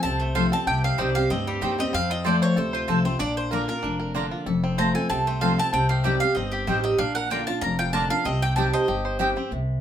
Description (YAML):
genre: bluegrass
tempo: 190 BPM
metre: 4/4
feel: swing 54% on 8ths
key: C dorian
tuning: A4 = 439 Hz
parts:
  - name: mandolin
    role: melody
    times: 0.0-9.2 s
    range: F4 to Bb5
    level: -27 LUFS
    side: right 1 dB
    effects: none
  - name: picked steel-string acoustic guitar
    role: accompaniment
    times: 0.0-9.8 s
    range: F2 to G4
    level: -26 LUFS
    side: left 1 dB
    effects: none
  - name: bluegrass banjo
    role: arpeggios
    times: 0.0-9.5 s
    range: G3 to C5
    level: -30 LUFS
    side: right 1 dB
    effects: none
  - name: upright bass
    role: bass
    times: 0.0-9.8 s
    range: F1 to F2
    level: -28 LUFS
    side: equal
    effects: none
  - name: mandolin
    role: stabs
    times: 0.3-9.3 s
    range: Bb3 to Bb5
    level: -28 LUFS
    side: right 3 dB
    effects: none
room: wet small room reverb, RT60 0.5 s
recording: band playing live in one room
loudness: -21 LUFS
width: side -10 dB against mid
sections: 0.0-9.5 A section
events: none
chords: 0.0 F; 0.7 Cm; 1.9 F; 3.2 Bb; 4.5 F; 5.7 Cm; 7.0 Bb; 8.3 Cm